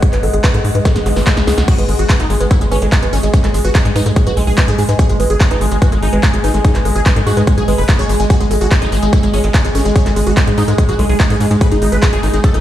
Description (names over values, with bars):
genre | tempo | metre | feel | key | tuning
psychedelic trance | 145 BPM | 4/4 | straight | G# minor | A4 = 440 Hz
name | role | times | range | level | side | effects
evolving wavetable pad | sustained chords | 0.0-12.6 s | G#3 | -23 LUFS | right 4 dB | chorus, built-in reverb, sidechain pumping
woody wave-folded pluck | riff | 0.0-12.6 s | G#4 to G#5 | -22 LUFS | moving between left 5 dB and right 4 dB | chorus, auto-pan, sidechain pumping, dub echo
big-room dance drum kit | drums | 0.0-12.6 s | crash cymbal, handclaps, hi-hat, snare drum | -22 LUFS | equal | overdrive
electronic kick drum | drums | 0.0-12.5 s | none | -12 LUFS | equal | overdrive
ethereal airy pad | texture | 0.0-12.6 s | G#4 to G#5 | -23 LUFS | left 2 dB | ensemble chorus, built-in reverb, sidechain pumping
tight sequencer bass | bass | 0.1-12.6 s | F#1 to G#2 | -16 LUFS | equal | none
swell and zap | sound effects | 1.0-1.7 s | none | -25 LUFS | left 2 dB | none
supersaw stab | melody | 1.7-12.6 s | G#3 to C#5 | -21 LUFS | equal | phaser, sidechain pumping, dub echo
room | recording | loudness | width
little or no reverb | played on a big sound system in a bare room, stone room reverb | -11 LUFS | side -12 dB against mid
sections
0.0-1.7 A section; 1.7-12.6 B section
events
filter sweep on synth arpeggio sound 0.0-1.7; drum fill 0.9-1.7; swell 1.0-1.7; drop 1.7-12.6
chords
0.0 G#5